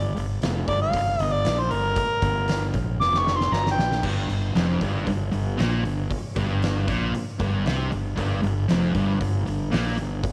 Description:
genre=blues rock power trio and southern rock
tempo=116 BPM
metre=4/4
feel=straight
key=G minor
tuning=A4 = 440 Hz
part: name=mellow harmonica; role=melody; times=0.0-4.0 s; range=Bb4 to D6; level=-27 LUFS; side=equal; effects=overdrive
part: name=fuzz fingered electric bass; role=bass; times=0.0-10.2 s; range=F1 to C2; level=-28 LUFS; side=equal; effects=overdrive
part: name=oversized low-tuned drum kit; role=drums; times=0.2-10.3 s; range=crash cymbal, hi-hat, kick drum, snare drum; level=-31 LUFS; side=equal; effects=none
part: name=fuzz guitar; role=riff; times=4.0-10.2 s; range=F2 to C3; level=-28 LUFS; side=equal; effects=distortion
room=moderate spring reverb, RT60 1.7 s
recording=none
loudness=-24 LUFS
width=mono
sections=0.0-4.0 A section; 4.0-10.3 B section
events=harmonica solo 0.0-4.0; drum fill 3.0-4.0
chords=0.0 Gm

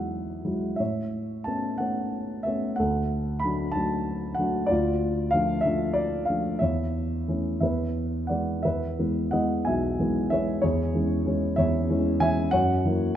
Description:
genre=classical, lyrical solo piano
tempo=57-64 BPM (dotted quarters)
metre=6/8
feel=rubato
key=A major, E major from 8.6 s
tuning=A4 = 439 Hz
part: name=dark concert grand piano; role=solo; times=0.0-13.2 s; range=B1 to B5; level=-24 LUFS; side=equal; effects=none
room=moderate concert hall reverb, RT60 1.9 s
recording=minimal, uncompressed stereo recording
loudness=-24 LUFS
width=side -10 dB against mid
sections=0.0-8.6 A section; 8.6-13.2 B section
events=none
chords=0.0 Eadd9; 0.8 Aadd9; 2.8 D; 4.7 Dm; 6.6 A/E; 7.6 E; 10.6 C#m/E; 12.5 F#7

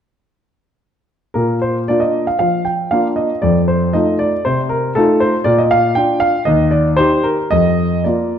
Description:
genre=classical-period piano sonatina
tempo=117 BPM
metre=4/4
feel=rubato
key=Bb major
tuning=A4 = 440 Hz
part: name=warm grand piano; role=solo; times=1.3-8.4 s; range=Eb2 to G5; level=-13 LUFS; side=equal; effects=none
room=wet recital hall reverb, RT60 1.6 s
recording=dark, warm production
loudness=-13 LUFS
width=side -8 dB against mid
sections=1.4-8.4 A section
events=none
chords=1.4 Bb; 3.4 F7; 5.5 Bb; 6.5 Eb; 7.5 Bb/F

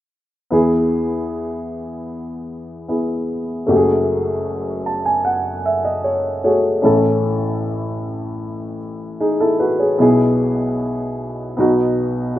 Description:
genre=pop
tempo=76 BPM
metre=4/4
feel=straight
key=E major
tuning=A4 = 440 Hz
part: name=warm baby grand piano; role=accompaniment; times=0.5-12.4 s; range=F#1 to A5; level=-17 LUFS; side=equal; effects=none
room=light reverb, small room ambience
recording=rough home demo mix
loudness=-16 LUFS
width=side -13 dB against mid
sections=0.5-12.4 A section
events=grand piano fill 4.5-6.8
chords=0.5 E; 3.7 F#madd9; 6.8 A; 10.0 E/B; 11.6 B

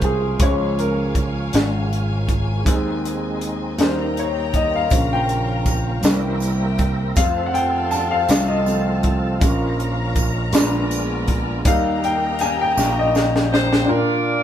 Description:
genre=slow gospel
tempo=53 BPM (dotted quarters)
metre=6/8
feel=straight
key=unclear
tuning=A4 = 440 Hz
part: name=warm upright piano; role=accompaniment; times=0.0-14.4 s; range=Bb2 to A5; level=-22 LUFS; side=left 1 dB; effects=none
part: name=tonewheel organ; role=sustained chords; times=0.0-13.9 s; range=C3 to Bb4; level=-30 LUFS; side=right 2 dB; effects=slow rotary speaker, overdrive, chorus vibrato
part: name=warm symphonic string section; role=sustained chords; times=0.0-13.9 s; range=Cb4 to Bb5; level=-31 LUFS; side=left 2 dB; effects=none
part: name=gritty slap bass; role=bass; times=0.0-13.9 s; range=Ab1 to F2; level=-23 LUFS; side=equal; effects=overdrive
part: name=crisp fusion drum kit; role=drums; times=0.0-13.9 s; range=hi-hat, kick drum, snare drum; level=-20 LUFS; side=equal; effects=none
part: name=tambourine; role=percussion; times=4.9-13.5 s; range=none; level=-33 LUFS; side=right 7 dB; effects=none
part: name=warm saxophone section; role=melody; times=13.5-14.4 s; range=F4 to D5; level=-22 LUFS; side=right 2 dB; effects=none
room=moderate studio ambience, RT60 0.5 s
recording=band playing live in one room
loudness=-17 LUFS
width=side -10 dB against mid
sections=0.0-13.9 A section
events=upright piano solo 0.0-13.9; drum fill 12.8-13.9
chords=0.4 Db; 2.7 Ab/Eb; 3.8 Eb; 4.9 Bbm; 6.0 C7; 7.2 F; 9.4 Bbm; 10.5 Bb7b9; 11.7 Eb; 13.9 Bb

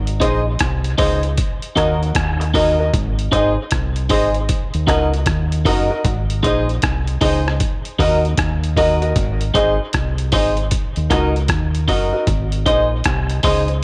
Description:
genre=dub reggae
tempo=77 BPM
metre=4/4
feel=swing 64% on 16ths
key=unclear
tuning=A4 = 436 Hz
part: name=deep dub fingered electric bass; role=bass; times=0.0-13.8 s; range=Gb1 to Eb2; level=-22 LUFS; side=equal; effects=none
part: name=trip hop sampler-style drum kit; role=drums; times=0.1-13.8 s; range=hi-hat, kick drum, rim click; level=-23 LUFS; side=equal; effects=none
part: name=clean electric guitar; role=accompaniment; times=0.2-13.7 s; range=Eb4 to Eb5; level=-24 LUFS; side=equal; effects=dub echo
part: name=clear concert grand piano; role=stabs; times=0.2-13.7 s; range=Eb4 to Eb5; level=-25 LUFS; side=equal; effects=dub echo
room=light reverb, digital ambience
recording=none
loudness=-18 LUFS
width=mono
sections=0.0-13.8 A section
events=none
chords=0.0 Ab; 1.4 Ebm; 2.9 Ab; 4.5 Ebm; 6.0 Ab; 7.6 Ebm; 9.2 Ab; 10.7 Ebm; 12.3 Ab

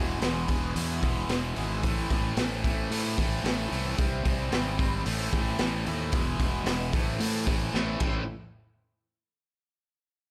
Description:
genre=quiet-loud alternative rock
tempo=112 BPM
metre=4/4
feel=straight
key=A minor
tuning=A4 = 441 Hz
part: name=distorted electric guitar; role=riff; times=0.0-8.2 s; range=E2 to C4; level=-36 LUFS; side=equal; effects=distortion
part: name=overdriven electric guitar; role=riff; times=0.0-8.2 s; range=A2 to A4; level=-37 LUFS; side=equal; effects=phaser
part: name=fuzz fingered electric bass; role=bass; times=0.0-8.3 s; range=E1 to A2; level=-34 LUFS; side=equal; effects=overdrive
part: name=raw garage drum kit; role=drums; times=0.2-8.1 s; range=crash cymbal, hi-hat, kick drum, snare drum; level=-32 LUFS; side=equal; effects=none
room=light reverb, studio reverb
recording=none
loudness=-28 LUFS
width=mono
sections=0.0-8.3 A section; 8.3-10.3 B section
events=drum fill 7.7-8.3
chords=0.0 E; 1.8 Am; 4.0 C; 5.1 Am; 6.1 E; 6.9 Am; 8.3 N.C.

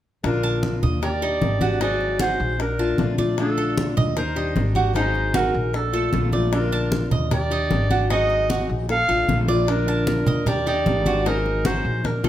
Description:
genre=latin, Cuban son and guajira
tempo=152 BPM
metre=4/4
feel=straight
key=Bb major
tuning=A4 = 440 Hz
part: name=nylon-string guitar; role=second line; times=0.2-12.3 s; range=D4 to A4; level=-30 LUFS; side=equal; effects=none
part: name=fingerpicked steel-string acoustic guitar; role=accompaniment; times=0.2-12.3 s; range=D3 to Ab4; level=-27 LUFS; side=left 4 dB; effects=none
part: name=upright bass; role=bass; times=0.2-12.3 s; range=Ab1 to Eb2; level=-25 LUFS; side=equal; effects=none
part: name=bongos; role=percussion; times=0.2-12.3 s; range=none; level=-32 LUFS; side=left 7 dB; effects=none
part: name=congas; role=percussion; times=0.2-12.3 s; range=none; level=-26 LUFS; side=equal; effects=none
part: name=clear clarinet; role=melody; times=0.3-12.3 s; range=A4 to F5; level=-25 LUFS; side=right 1 dB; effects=none
part: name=Cuban tres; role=arpeggios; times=0.4-12.3 s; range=Eb4 to A5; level=-28 LUFS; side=right 5 dB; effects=none
room=moderate large studio reverb, RT60 1.2 s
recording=none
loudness=-19 LUFS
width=side -12 dB against mid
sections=0.2-12.3 A section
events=drum fill 12.0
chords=0.2 Bbmaj7; 1.0 Ebmaj7; 1.8 Ab7; 2.6 Bbmaj7; 4.2 Ebmaj7; 5.0 Ab7; 5.7 Bbmaj7; 7.3 Ebmaj7; 8.1 Ab7; 8.9 Bbmaj7; 10.5 Ebmaj7; 11.3 Ab7

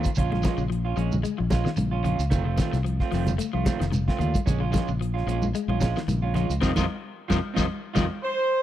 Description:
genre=afrobeat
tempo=112 BPM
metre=4/4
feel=swing 54% on 16ths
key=Bb minor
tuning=A4 = 440 Hz
part: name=electric guitar at the edge of break-up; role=arpeggios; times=0.0-8.1 s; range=C3 to A3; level=-31 LUFS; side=left 9 dB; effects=spring reverb
part: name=electric guitar at the edge of break-up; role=stabs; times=0.0-8.0 s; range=Eb3 to F4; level=-31 LUFS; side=right 8 dB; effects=none
part: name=fingered electric bass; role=bass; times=0.0-8.1 s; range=F1 to F2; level=-26 LUFS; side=equal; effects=none
part: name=shekere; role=percussion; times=0.0-8.1 s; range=none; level=-35 LUFS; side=right 4 dB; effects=none
part: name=damped 70s drum kit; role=drums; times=0.1-8.1 s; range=hi-hat, kick drum, snare drum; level=-27 LUFS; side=equal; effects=none
part: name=congas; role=percussion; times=0.2-8.1 s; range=none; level=-30 LUFS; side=equal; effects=none
part: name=clear horn section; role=melody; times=8.2-8.6 s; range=C5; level=-22 LUFS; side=equal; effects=none
part: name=growling trumpet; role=second line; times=8.2-8.6 s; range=C5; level=-28 LUFS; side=right 5 dB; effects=none
room=studio reverb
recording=dry, close 1970s-style studio recording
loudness=-23 LUFS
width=side -12 dB against mid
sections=0.0-8.6 A section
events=band accent 6.6-8.6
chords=0.2 Bbm7; 2.3 F7; 4.5 Bbm7; 6.6 F5

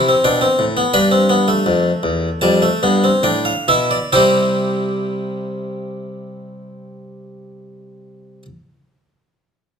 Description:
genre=classical, baroque-style 4-part fugue for harpsichord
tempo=64-90 BPM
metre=4/4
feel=straight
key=C major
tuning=A4 = 439 Hz
part: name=harpsichord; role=solo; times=0.0-8.5 s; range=E2 to B5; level=-15 LUFS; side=equal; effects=none
room=wet large studio reverb, RT60 1.3 s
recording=minimal, uncompressed stereo recording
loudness=-14 LUFS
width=side -7 dB against mid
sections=0.0-4.1 A section; 4.1-7.8 B section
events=slowing down 0.0-4.1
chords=0.0 C5; 0.9 G7; 4.1 C

